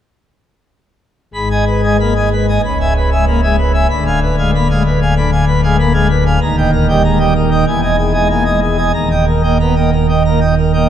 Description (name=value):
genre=classical, organ toccata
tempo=95 BPM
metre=4/4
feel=straight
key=G# minor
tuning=A4 = 439 Hz
part: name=pipe organ, plenum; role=solo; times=1.3-10.9 s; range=C#1 to B5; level=-11 LUFS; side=equal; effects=none
room=wet cathedral reverb, RT60 4.7 s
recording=dark, warm production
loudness=-11 LUFS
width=side -10 dB against mid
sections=1.3-10.9 A section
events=none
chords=1.3 G#m; 2.6 C#m7; 3.9 Ddim7; 6.4 D#; 7.7 Emaj7; 9.0 D#